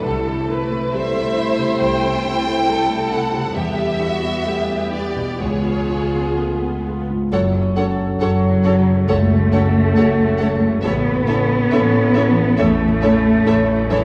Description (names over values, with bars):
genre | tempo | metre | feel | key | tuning
cinematic, emotional film score for orchestra | 68 BPM | 4/4 | rubato | F# minor from 7.3 s | A4 = 445 Hz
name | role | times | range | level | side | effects
rich studio violin section | melody | 0.0-14.0 s | C#5 to G5 | -28 LUFS | equal | none
rich studio violin section | second line | 0.0-14.0 s | F#4 to C#5 | -27 LUFS | equal | none
rich studio viola section | accompaniment | 0.0-14.0 s | G3 to A4 | -29 LUFS | equal | none
warm concert grand piano | accompaniment | 0.0-14.0 s | A1 to A4 | -25 LUFS | equal | none
concert harp | arpeggios | 0.0-14.0 s | F#2 to E5 | -27 LUFS | equal | none
dark studio cello section | bass | 0.0-14.0 s | C#2 to B3 | -22 LUFS | equal | none
clear studio double bass section | bass | 7.3-14.0 s | F#1 to A1 | -24 LUFS | equal | none
room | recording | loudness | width
wet recital hall reverb, RT60 1.8 s | recorded in a church or concert hall | -18 LUFS | mono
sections
0.0-7.3 A section; 7.3-14.0 A section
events
none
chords
0.0 Am/C; 3.5 Em; 5.4 C#7; 7.3 F#m; 10.8 A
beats
| 0.05 0.93 1.80 2.68 | 3.54 4.45 5.41 6.37 | 7.32 8.21 9.09 9.96 | 10.84 11.72 12.59 13.46